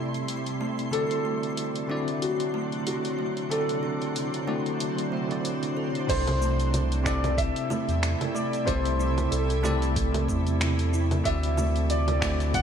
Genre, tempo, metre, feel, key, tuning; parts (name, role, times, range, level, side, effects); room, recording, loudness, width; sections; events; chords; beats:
sunset chillout; 93 BPM; 4/4; swing 56% on 16ths; C lydian; A4 = 442 Hz
bell-like tine electric piano; accompaniment; 0.0-12.6 s; C3 to E5; -30 LUFS; moving between left 6 dB and right 4 dB; fast stereo tremolo, auto-pan, tape echo, shimmer reverb
shimmering ambient pad; sustained chords; 0.0-12.6 s; C3 to C5; -34 LUFS; equal; chorus, built-in reverb, vintage 12-bit sampler grit, shimmer reverb
kalimba; arpeggios; 0.0-12.4 s; A3 to A4; -36 LUFS; right 6 dB; tape echo, shimmer reverb
twinkling granular texture; texture; 0.0-6.1 s; C6; -42 LUFS; equal; built-in reverb, ensemble chorus, shimmer reverb
smooth R&B drum kit; drums; 0.1-12.6 s; congas, crash cymbal, finger snaps, hi-hat, shaker; -33 LUFS; right 1 dB
dark baby grand piano; melody; 0.9-12.6 s; F#4 to F#5; -31 LUFS; equal; wide subtle chorus, tape echo, shimmer reverb
warm sub bass; bass; 6.1-12.6 s; C2 to E2; -26 LUFS; equal
electronic kick drum; drums; 6.1-12.6 s; -31 LUFS; equal
moderate plate reverb, RT60 2.7 s; dreamy mix soaked in reverb; -24 LUFS; side -8 dB against mid
0.0-6.1 A section; 6.1-12.6 B section
0.0 C6; 0.9 D7; 6.1 C6; 11.3 D7
0.28 | 0.93 1.57 2.22 2.87 | 3.51 4.16 4.80 5.45 | 6.09 6.74 7.38 8.03 | 8.67 9.32 9.96 10.61 | 11.25 11.90 12.54